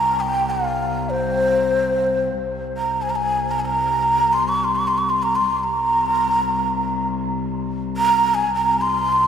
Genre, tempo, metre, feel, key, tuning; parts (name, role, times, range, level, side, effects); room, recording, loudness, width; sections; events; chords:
Persian modal ensemble; free time; C dastgah shur; A4 = 439 Hz
breathy mellow ney; melody; 0.0-9.3 s; C5 to Db6+48c; -18 LUFS; equal
dark cello; drone; 0.0-9.3 s; C2; -26 LUFS; left 3 dB
wet cathedral reverb, RT60 5.3 s; recorded in a church or concert hall; -18 LUFS; side -8 dB against mid
0.0-2.4 A section; 2.4-9.3 A section